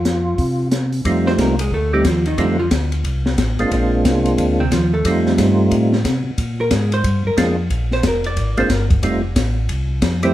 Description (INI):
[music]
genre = soul jazz organ trio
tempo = 180 BPM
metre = 4/4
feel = swing 63% on 8ths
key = F mixolydian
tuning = A4 = 440 Hz
[part]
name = percussive tonewheel organ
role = melody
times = 0.0-10.3 s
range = G3 to G4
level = -18 LUFS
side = right 1 dB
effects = slow rotary speaker, chorus vibrato
[part]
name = mellow tonewheel organ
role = bass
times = 0.0-10.3 s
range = F1 to C3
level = -20 LUFS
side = equal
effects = slow rotary speaker
[part]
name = compact cocktail drum kit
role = drums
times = 0.1-10.3 s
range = hi-hat, kick drum, ride cymbal, snare drum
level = -21 LUFS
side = left 1 dB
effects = none
[part]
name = vintage hollow-body jazz guitar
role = accompaniment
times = 1.3-10.3 s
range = C3 to D5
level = -22 LUFS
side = right 1 dB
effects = none
[sound]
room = moderate large studio reverb, RT60 1.2 s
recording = heard from further back in the room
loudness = -15 LUFS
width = side -13 dB against mid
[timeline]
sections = 0.0-1.1 A section; 1.1-10.3 B section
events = hollow-body jazz guitar solo 1.1-10.3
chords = 0.0 F5; 1.1 F7; 3.7 Bb7; 5.0 F7; 6.4 Bb7; 9.0 F7